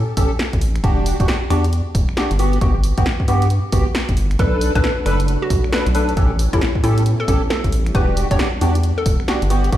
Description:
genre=UK garage, two-step garage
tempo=135 BPM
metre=4/4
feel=swing 63% on 16ths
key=unclear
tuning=A4 = 442 Hz
part: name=rubbery square bass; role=bass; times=0.0-9.8 s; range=E1 to A2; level=-18 LUFS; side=equal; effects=sidechain pumping
part: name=percussive organ stab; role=stabs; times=0.2-9.8 s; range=B3 to B4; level=-22 LUFS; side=equal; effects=ensemble chorus, ping-pong delay
part: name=electronic kick drum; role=drums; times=0.2-9.8 s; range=none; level=-19 LUFS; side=equal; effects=none
part: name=punchy analog drum machine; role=drums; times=0.2-9.8 s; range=finger snaps, hi-hat, snare drum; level=-26 LUFS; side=equal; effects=none
part: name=hollow square pluck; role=melody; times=4.4-9.1 s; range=E4 to C#5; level=-26 LUFS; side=equal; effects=chorus, tape echo
part: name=soft string machine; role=sustained chords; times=4.4-9.8 s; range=G3 to F#5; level=-30 LUFS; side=right 1 dB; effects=ensemble chorus, sidechain pumping
room=light reverb, digital ambience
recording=played on a big sound system in a bare room, stone room reverb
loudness=-15 LUFS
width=side -13 dB against mid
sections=0.0-9.8 A section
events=none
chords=0.0 A7; 0.8 Em9; 2.4 Gmaj7; 4.4 Bm7; 6.2 A7; 7.9 Em9

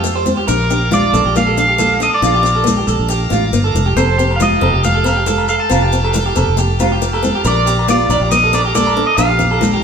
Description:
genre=highlife guitar band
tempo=138 BPM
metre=4/4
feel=straight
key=unclear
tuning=A4 = 441 Hz
part: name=electric guitar at the edge of break-up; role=melody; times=0.0-9.8 s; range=A4 to A5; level=-16 LUFS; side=equal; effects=tremolo
part: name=picked acoustic archtop guitar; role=accompaniment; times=0.0-9.7 s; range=A3 to D4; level=-21 LUFS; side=left 4 dB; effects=none
part: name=bright tonewheel organ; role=sustained chords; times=0.0-9.8 s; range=D5 to Bb5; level=-26 LUFS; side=equal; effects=slow rotary speaker, overdrive
part: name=clean electric guitar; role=arpeggios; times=0.0-9.8 s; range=F4 to D5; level=-19 LUFS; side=right 5 dB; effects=none
part: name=fingered electric bass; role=bass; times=0.0-9.8 s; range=F1 to F2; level=-18 LUFS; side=equal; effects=none
part: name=maracas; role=percussion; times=0.0-9.7 s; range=none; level=-27 LUFS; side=left 6 dB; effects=none
part: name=congas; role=percussion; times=0.3-9.7 s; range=none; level=-22 LUFS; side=left 2 dB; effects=none
part: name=agogo bells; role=percussion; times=4.0-9.6 s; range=none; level=-25 LUFS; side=left 4 dB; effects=none
room=wet stone room reverb, RT60 1.4 s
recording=band playing live in one room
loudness=-12 LUFS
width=side -6 dB against mid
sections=0.0-9.8 A section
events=none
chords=0.5 Bb; 4.0 Fadd9; 7.5 Bb

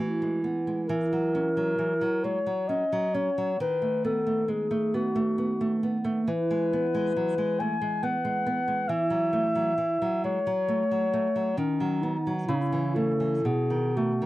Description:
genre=romantic duo for clarinet and classical guitar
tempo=67 BPM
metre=3/4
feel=rubato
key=E major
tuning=A4 = 444 Hz
part: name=dark clarinet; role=melody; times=0.0-14.3 s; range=C#4 to G#5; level=-27 LUFS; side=left 2 dB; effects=none
part: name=nylon-string guitar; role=accompaniment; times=0.0-14.3 s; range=B2 to C#4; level=-27 LUFS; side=right 2 dB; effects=none
room=light reverb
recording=dry, close 1970s-style studio recording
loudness=-24 LUFS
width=side -16 dB against mid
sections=0.0-14.3 A section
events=none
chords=0.0 E; 0.9 F#7/E; 3.6 B7/D#; 6.3 E; 8.9 F#m7/E; 11.6 B/D#; 12.5 A/C#; 13.5 B7

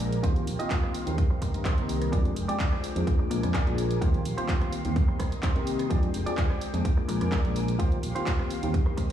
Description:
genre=filtered disco house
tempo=127 BPM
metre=4/4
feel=straight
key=unclear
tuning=A4 = 444 Hz
part: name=dark concert grand piano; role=accompaniment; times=0.0-9.1 s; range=Eb3 to G5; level=-32 LUFS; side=left 4 dB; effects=phaser, sidechain pumping, low-pass filter
part: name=string machine, full ensemble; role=sustained chords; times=0.0-9.1 s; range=Ab3 to D6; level=-38 LUFS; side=equal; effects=ensemble chorus, sidechain pumping, low-pass filter
part: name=fingered electric bass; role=bass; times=0.0-9.1 s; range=F1 to C3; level=-31 LUFS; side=right 2 dB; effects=sidechain pumping, low-pass filter
part: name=house drum kit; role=drums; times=0.0-9.1 s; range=handclaps, hi-hat, rim click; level=-37 LUFS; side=right 1 dB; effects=overdrive, sidechain pumping on hats, sidechain pumping on cymbals
part: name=direct-recorded clean electric guitar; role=riff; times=0.2-9.1 s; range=Eb4 to Eb5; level=-38 LUFS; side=right 4 dB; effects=harmonic tremolo, sidechain pumping, low-pass filter
part: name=electronic kick drum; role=drums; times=0.2-9.1 s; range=none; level=-26 LUFS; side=equal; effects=overdrive
room=digital ambience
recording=played on a big sound system in a bare room, large studio reverb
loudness=-24 LUFS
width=side -10 dB against mid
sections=0.0-9.1 A section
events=filter sweep 0.0-9.1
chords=0.2 Eb69; 1.2 Cm7; 2.1 Fm69; 3.1 Bb7; 4.0 Eb69; 5.0 Cm7; 5.9 Fm69; 6.9 Bb7; 7.8 Eb69

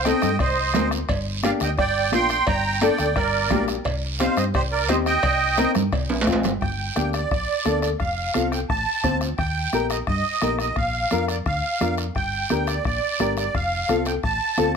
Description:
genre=latin, cumbia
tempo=174 BPM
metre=4/4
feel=straight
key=G minor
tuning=A4 = 440 Hz
part: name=musette accordion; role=melody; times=0.0-14.7 s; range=G4 to C6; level=-24 LUFS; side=right 4 dB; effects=plate reverb
part: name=hollow-body short-scale fingered electric bass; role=bass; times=0.0-14.8 s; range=F1 to G2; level=-28 LUFS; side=equal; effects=none
part: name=nylon-string guitar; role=accompaniment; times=0.1-14.8 s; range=Bb3 to C5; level=-24 LUFS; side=left 6 dB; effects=none
part: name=bombo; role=percussion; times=0.1-14.8 s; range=none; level=-28 LUFS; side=left 3 dB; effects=none
part: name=congas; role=percussion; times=0.1-14.8 s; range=none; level=-29 LUFS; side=right 8 dB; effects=none
part: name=cowbell and timbales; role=percussion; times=0.1-6.5 s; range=none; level=-28 LUFS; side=right 3 dB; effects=none
part: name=guiro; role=percussion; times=0.1-14.8 s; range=none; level=-33 LUFS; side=right 6 dB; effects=none
room=moderate studio reverb, RT60 0.5 s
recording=none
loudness=-20 LUFS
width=side -6 dB against mid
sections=0.0-6.6 A section; 6.6-14.8 B section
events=drum fill 6.1-6.6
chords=0.0 Cm; 1.1 Gm; 3.9 Cm; 6.6 Gm; 8.0 F; 9.4 Eb; 10.8 Bb; 12.2 Gm; 13.5 F

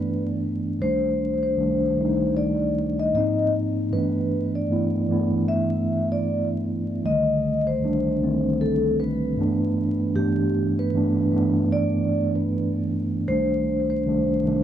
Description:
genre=hip hop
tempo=77 BPM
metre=4/4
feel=swing 60% on 16ths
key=G major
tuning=A4 = 440 Hz
part: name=vibraphone with medium mallets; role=melody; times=0.0-14.6 s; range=G4 to E5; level=-26 LUFS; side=left 2 dB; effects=tape echo
part: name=mellow tine electric piano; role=accompaniment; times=0.0-14.6 s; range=C2 to E4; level=-22 LUFS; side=right 1 dB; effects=medium stereo tremolo, cassette tape
room=moderate small room reverb, RT60 0.5 s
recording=worn, warbling old tape, cassette tape, vinyl crackle, warbly pitch drift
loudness=-21 LUFS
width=side -10 dB against mid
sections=0.0-10.2 A section; 10.2-14.6 A section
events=none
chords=0.0 G6; 0.8 Cm6; 3.1 Ab6; 3.9 G6; 7.0 Cm6; 9.4 G69; 13.3 Cm6

